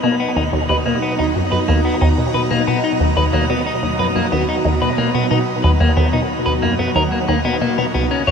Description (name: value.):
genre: ambient, sequencer-driven space music.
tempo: 91 BPM.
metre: 4/4.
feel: straight.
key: unclear.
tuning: A4 = 442 Hz.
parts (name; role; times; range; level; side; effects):
phased string machine; sustained chords; 0.0-8.3 s; B2 to A#5; -21 LUFS; equal; ensemble chorus, phaser.
electric guitar at the edge of break-up; arpeggios; 0.0-8.3 s; A#3 to C#5; -20 LUFS; moving between left 5 dB and right 1 dB; auto-pan, low-pass filter, tape echo.
resonant blip pluck; riff; 0.0-8.3 s; C#2 to B2; -18 LUFS; equal; phaser, analog chorus, tape echo.
room: wet shimmer reverb, RT60 7.8 s.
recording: cassette tape.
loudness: -15 LUFS.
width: side -6 dB against mid.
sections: 0.0-8.3 A section.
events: none.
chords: 0.0 Bmaj7.